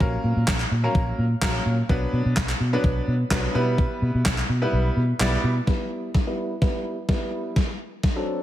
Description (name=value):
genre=dance-pop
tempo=127 BPM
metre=4/4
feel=straight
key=E minor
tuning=A4 = 440 Hz
part: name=bright grand piano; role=accompaniment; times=0.0-8.4 s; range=F#3 to D5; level=-27 LUFS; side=equal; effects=sidechain pumping, low-pass filter, slapback echo
part: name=vintage muted fingered electric bass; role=bass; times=0.0-5.6 s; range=A#1 to B2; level=-23 LUFS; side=equal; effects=sidechain pumping
part: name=gated 80s digital drum machine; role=drums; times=0.0-8.2 s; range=handclaps, kick drum, snare drum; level=-24 LUFS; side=equal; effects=gated reverb, gated reverb snare, overdrive
room=light reverb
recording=none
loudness=-21 LUFS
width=side -13 dB against mid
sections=0.0-5.7 A section; 5.7-8.4 B section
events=kick muted 4.7-5.7; build-up 5.7-8.4; drum fill 5.7-8.4; filter sweep on grand piano 5.7-8.4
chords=0.0 F#/A#; 1.9 Bm; 3.5 Em/B; 5.7 Em; 7.6 D7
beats=| 0.01 0.48 0.95 1.42 | 1.89 2.37 2.84 3.31 | 3.78 4.26 4.73 5.20 | 5.67 6.15 6.62 7.09 | 7.56 8.04